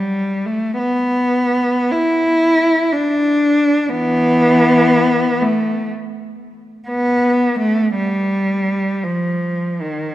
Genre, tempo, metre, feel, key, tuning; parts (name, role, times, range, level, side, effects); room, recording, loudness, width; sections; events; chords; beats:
classical, free, expressive piece for unaccompanied cello; 47-63 BPM; 3/4; rubato; A4 = 439 Hz
rich cello; solo; 0.0-10.1 s; D#3 to E4; -14 LUFS; equal
moderate concert hall reverb, RT60 2.4 s; -14 LUFS; side -14 dB against mid
0.0-10.1 A section
| 0.79 1.93 2.94 | 3.91 4.90 5.89 | 6.87 7.94 9.02